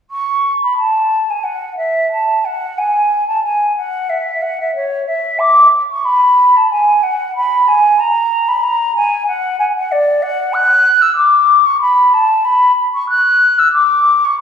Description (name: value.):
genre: classical, baroque-style fantasia for unaccompanied flute.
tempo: 92 BPM.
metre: 4/4.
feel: rubato.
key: F# minor from 10.5 s.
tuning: A4 = 440 Hz.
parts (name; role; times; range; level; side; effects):
mellow concert flute; solo; 0.1-14.4 s; C#5 to F#6; -11 LUFS; equal; none.
room: wet recital hall reverb, RT60 1.4 s.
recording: recorded in a church or concert hall.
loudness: -11 LUFS.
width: side -8 dB against mid.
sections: 0.1-14.4 A section.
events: none.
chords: none.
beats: | 0.10 0.78 1.45 2.11 | 2.78 3.43 4.08 4.73 | 5.38 6.05 6.70 7.34 | 7.98 8.63 9.27 9.89 | 10.52 11.15 11.79 12.43 | 13.08 13.73 14.39.